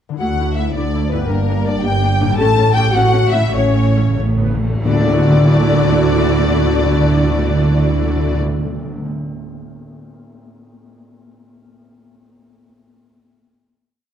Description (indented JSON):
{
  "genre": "cinematic, heroic adventure film score",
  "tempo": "86-111 BPM (dotted quarters)",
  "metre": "6/8",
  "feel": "straight",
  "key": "D major",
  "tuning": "A4 = 441 Hz",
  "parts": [
    { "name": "concert harp", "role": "arpeggios", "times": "0.1-9.2 s", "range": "G2 to F#5", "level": "-26 LUFS", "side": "left 7 dB", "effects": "none" },
    { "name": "rich symphonic violin section", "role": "melody", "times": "0.2-8.4 s", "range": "Bb4 to A5", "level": "-23 LUFS", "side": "left 3 dB", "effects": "none" },
    { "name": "rich symphonic violin section", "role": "second line", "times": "0.2-8.4 s", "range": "Bb4 to A5", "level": "-24 LUFS", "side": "left 2 dB", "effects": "none" },
    { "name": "warm symphonic viola section", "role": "accompaniment", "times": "0.2-8.4 s", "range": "A3 to F#4", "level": "-24 LUFS", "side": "right 1 dB", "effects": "none" },
    { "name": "mellow French horn section", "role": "sustained chords", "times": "0.2-8.4 s", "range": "Bb3 to A4", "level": "-21 LUFS", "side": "left 4 dB", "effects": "none" },
    { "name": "rich studio double bass section", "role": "bass", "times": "0.2-8.4 s", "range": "G1 to D2", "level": "-20 LUFS", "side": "right 2 dB", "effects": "none" },
    { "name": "rich symphonic cello section", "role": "bass", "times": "0.2-8.4 s", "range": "D2 to D3", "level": "-20 LUFS", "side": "right 3 dB", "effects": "none" },
    { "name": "cymbal swell and tam-tam", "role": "percussion", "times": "2.4-6.7 s", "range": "none", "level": "-24 LUFS", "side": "left 1 dB", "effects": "none" },
    { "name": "timpani", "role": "percussion", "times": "2.4-9.1 s", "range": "A2 to D3", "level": "-20 LUFS", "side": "equal", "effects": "none" }
  ],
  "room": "moderate concert hall reverb, RT60 2.0 s",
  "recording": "dark, warm production",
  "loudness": "-13 LUFS",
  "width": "side -9 dB against mid",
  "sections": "0.2-4.9 theme; 4.9-7.6 final chord",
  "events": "slowing down 1.8-4.9; timpani fill 2.4-4.9; band accent 4.9-5.3",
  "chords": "0.2 Dadd9; 1.3 Gm; 2.4 A; 4.9 Dadd9"
}